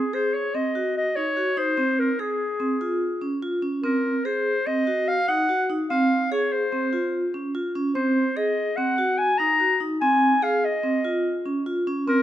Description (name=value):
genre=contemporary instrumental, contemporary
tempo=146 BPM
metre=5/4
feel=straight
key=Db major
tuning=A4 = 443 Hz
part: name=warm clarinet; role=melody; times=0.0-12.2 s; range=Ab4 to Bb5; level=-23 LUFS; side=left 1 dB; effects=none
part: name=vibraphone with medium mallets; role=arpeggios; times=0.1-12.2 s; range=C4 to Ab4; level=-24 LUFS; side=right 1 dB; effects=none
room=moderate scoring stage reverb, RT60 2.0 s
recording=close, detailed microphones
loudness=-21 LUFS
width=side -12 dB against mid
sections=0.0-12.2 A section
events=none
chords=0.0 Ab7; 1.8 Dbmaj7; 3.8 Ab7; 5.9 Dbmaj7; 8.0 Ab7; 10.0 Dbmaj7